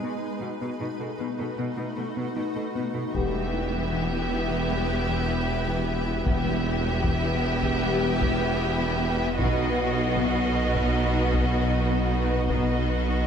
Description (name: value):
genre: cinematic, hybrid orchestral and electronic film score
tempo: 77 BPM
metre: 4/4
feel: straight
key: E harmonic minor from 3.2 s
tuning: A4 = 439 Hz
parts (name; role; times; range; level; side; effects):
- shimmering ambient pad; sustained chords; 0.0-13.3 s; A3 to B4; -32 LUFS; left 1 dB; chorus, built-in reverb
- thumb-piano-like synth pluck; arpeggios; 0.0-13.2 s; E3 to B4; -34 LUFS; left 6 dB; chorus, digital delay
- rich symphonic cello section; bass; 0.0-13.3 s; E2 to B2; -32 LUFS; right 3 dB; none
- warm French horn section; sustained chords; 3.1-12.8 s; B3 to G4; -35 LUFS; left 4 dB; none
- bright symphonic double bass section; bass; 3.1-13.3 s; E1 to B1; -31 LUFS; right 3 dB; none
- soft dub sub bass; bass; 3.1-13.3 s; E1 to B1; -33 LUFS; equal; none
- taiko ensemble; drums; 3.1-13.2 s; none; -30 LUFS; equal; none
- warm studio violin section; melody; 3.2-13.3 s; D#5 to E5; -32 LUFS; left 1 dB; none
- warm symphonic violin section; second line; 3.2-13.3 s; F#4 to G4; -32 LUFS; left 1 dB; none
- rich studio viola section; accompaniment; 3.2-13.3 s; B3; -32 LUFS; equal; none
- mellow tuba; bass; 3.2-13.3 s; E1 to B1; -32 LUFS; right 3 dB; none
room: moderate scoring stage reverb, RT60 1.8 s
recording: none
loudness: -23 LUFS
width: side -7 dB against mid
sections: 0.0-3.2 A section; 3.2-13.3 B section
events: build-up 0.0-3.2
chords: 0.0 B7; 3.2 Em; 9.4 B